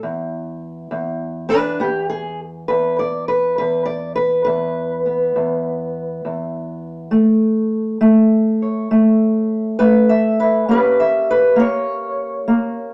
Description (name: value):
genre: acoustic country blues, solo or duo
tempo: 68 BPM (dotted quarters)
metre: 12/8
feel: straight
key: unclear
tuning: A4 = 440 Hz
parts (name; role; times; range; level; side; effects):
- fingerpicked old ladder-braced acoustic guitar; solo; 0.0-12.9 s; E2 to E5; -18 LUFS; equal; none
room: wet small room reverb, RT60 0.5 s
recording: none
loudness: -17 LUFS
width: mono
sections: 0.0-12.9 A section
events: steel-string acoustic guitar solo 0.0-12.9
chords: 0.0 E5; 7.1 A; 10.7 F#7b9 (rootless)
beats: | 0.03 0.92 1.80 2.69 | 3.58 4.47 5.36 6.25 | 7.14 8.03 8.92 9.80 | 10.69 11.58 12.46